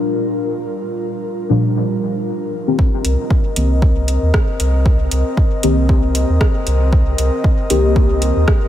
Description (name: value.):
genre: dub techno.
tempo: 116 BPM.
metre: 4/4.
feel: swing 56% on 16ths.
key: C minor.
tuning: A4 = 441 Hz.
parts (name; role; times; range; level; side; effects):
airy breathy pad; sustained chords; 0.0-8.7 s; G3 to Eb5; -23 LUFS; left 1 dB; chorus, vintage 12-bit sampler grit, sidechain pumping.
deep mellow chord stab; stabs; 0.0-8.7 s; Bb2 to G4; -20 LUFS; left 2 dB; chorus, phaser, sidechain pumping, dub echo.
electronic kick drum; drums; 2.8-8.6 s; none; -14 LUFS; equal; overdrive, studio reverb.
pure sine sub bass; bass; 3.0-8.5 s; C2 to Eb2; -16 LUFS; equal; sidechain pumping.
deep house drum kit; drums; 3.0-8.6 s; hi-hat, rim click; -24 LUFS; right 1 dB; overdrive, studio reverb.
room: moderate huge ambient reverb, RT60 6.5 s.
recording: dreamy mix soaked in reverb.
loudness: -14 LUFS.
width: side -12 dB against mid.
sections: 0.0-2.8 A section; 2.8-8.7 B section.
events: none.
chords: 0.0 C7(no3) (rootless); 2.8 Cm7.